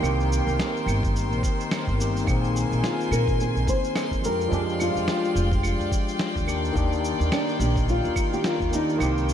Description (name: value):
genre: sunset chillout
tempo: 107 BPM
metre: 4/4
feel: swing 58% on 16ths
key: unclear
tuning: A4 = 440 Hz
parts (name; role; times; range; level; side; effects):
- overdriven tine electric piano; accompaniment; 0.0-9.3 s; Eb3 to Ab4; -28 LUFS; moving between left 6 dB and right 6 dB; auto-pan, ping-pong delay
- warm studio string section; sustained chords; 0.0-9.3 s; Eb3 to Ab5; -31 LUFS; left 2 dB; none
- upright bass; bass; 0.0-9.3 s; F1 to Bb2; -26 LUFS; equal; none
- electronic claves, shaker and snare drum; drums; 0.0-9.3 s; none; -32 LUFS; right 1 dB; none
- drifting glass-harmonics texture; texture; 0.0-9.3 s; C6 to C7; -37 LUFS; equal; chorus, built-in reverb
- electronic kick drum; drums; 1.0-8.7 s; none; -27 LUFS; equal; none
- nylon-string guitar; melody; 2.9-9.3 s; D4 to C5; -27 LUFS; left 2 dB; ping-pong delay
room: moderate plate reverb, RT60 2.3 s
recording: dreamy mix soaked in reverb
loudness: -22 LUFS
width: side -9 dB against mid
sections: 0.0-9.3 A section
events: none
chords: 0.0 Cm7; 2.3 Bb9sus4; 4.2 Fm69; 6.5 Ebmaj7